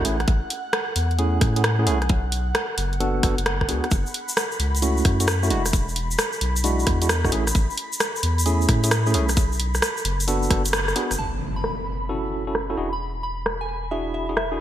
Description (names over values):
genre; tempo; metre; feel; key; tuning
UK garage, two-step garage; 132 BPM; 4/4; swing 66% on 16ths; F# minor; A4 = 440 Hz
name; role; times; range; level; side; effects
airy breathy pad; sustained chords; 0.0-14.6 s; F#5 to B5; -33 LUFS; right 1 dB; chorus, sidechain pumping
tine electric piano; stabs; 0.0-14.6 s; G#3 to A4; -26 LUFS; right 1 dB; fast stereo tremolo, low-pass filter, digital delay
soft dub sub bass; bass; 0.0-14.6 s; E1 to A2; -24 LUFS; equal; tube saturation
garage drum kit; drums; 0.0-14.5 s; hi-hat, rim click; -25 LUFS; equal; low-pass filter on hats, low-pass filter on snare, gated reverb
electronic kick drum; drums; 0.3-10.6 s; none; -22 LUFS; equal; none
egg shaker; percussion; 3.9-11.2 s; none; -30 LUFS; left 2 dB; none
soft synth bell; melody; 11.2-14.6 s; E5 to B5; -32 LUFS; right 1 dB; chorus, digital delay
impact; sound effects; 11.2-13.0 s; none; -33 LUFS; equal; none
room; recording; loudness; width
light reverb; bright 1980s-style digital production; -20 LUFS; side -11 dB against mid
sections
0.0-11.2 A section; 11.2-14.6 B section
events
kick drops out 10.7-11.2; band accent 10.7; impact 11.2-13.0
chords
0.1 Amaj7; 2.1 Bm7; 3.9 F#m7; 5.5 E9; 7.3 Amaj7; 9.4 Bm7; 11.2 F#m7; 12.8 E9